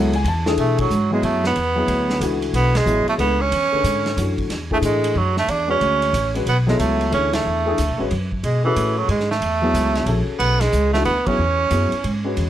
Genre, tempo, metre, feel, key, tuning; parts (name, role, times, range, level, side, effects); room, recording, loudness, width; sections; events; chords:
modal jazz; 183 BPM; 3/4; swing 64% on 8ths; B dorian; A4 = 440 Hz
dark grand piano; accompaniment; 0.0-12.5 s; D3 to A5; -23 LUFS; left 3 dB
upright bass; bass; 0.0-12.5 s; A1 to B2; -22 LUFS; equal
vintage drum kit; drums; 0.1-12.5 s; hi-hat, kick drum, ride cymbal, snare drum; -30 LUFS; right 1 dB
bright tenor saxophone; melody; 0.6-12.3 s; E3 to D4; -20 LUFS; right 4 dB; plate reverb
light reverb; -17 LUFS; side -11 dB against mid
0.6-12.5 A section
band accent 0.7, 2.7, 7.3, 11.2
0.0 E13sus4; 0.6 B13sus4